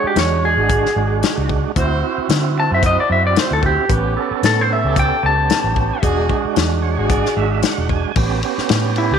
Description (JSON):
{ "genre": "straight-eighth soul blues", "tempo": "112 BPM", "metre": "4/4", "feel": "swing 56% on 16ths", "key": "unclear", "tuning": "A4 = 440 Hz", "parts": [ { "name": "electric guitar through a small old amp", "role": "melody", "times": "0.0-9.2 s", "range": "E4 to A5", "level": "-18 LUFS", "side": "left 1 dB", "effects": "none" }, { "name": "tonewheel organ", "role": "accompaniment", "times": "0.0-9.2 s", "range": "G#3 to G#5", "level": "-22 LUFS", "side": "right 12 dB", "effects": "slow rotary speaker, overdrive" }, { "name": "warm horn section", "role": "sustained chords", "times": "0.0-7.5 s", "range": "C#4 to C5", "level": "-25 LUFS", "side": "left 2 dB", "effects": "none" }, { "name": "vintage muted fingered electric bass", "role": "bass", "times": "0.0-9.2 s", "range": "E1 to D3", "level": "-20 LUFS", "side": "equal", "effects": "none" }, { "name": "warm soul drum kit", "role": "drums", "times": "0.2-9.1 s", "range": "hi-hat, kick drum, ride cymbal, snare drum", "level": "-20 LUFS", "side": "left 4 dB", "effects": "none" } ], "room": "moderate echo chamber reverb, RT60 2.2 s", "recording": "1960s-style stereo", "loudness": "-14 LUFS", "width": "side -7 dB against mid", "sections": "0.0-8.2 A section; 8.2-9.2 B section", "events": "tonewheel organ fill 6.6-8.2; clean electric guitar solo 8.2-9.2", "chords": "0.0 E9; 1.8 D9; 3.9 A9; 6.0 E9; 8.2 A9", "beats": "0.16 0.70 1.23 | 1.76 2.30 2.83 3.36 | 3.90 4.43 4.96 5.50 | 6.03 6.56 7.10 7.63 | 8.16 8.70" }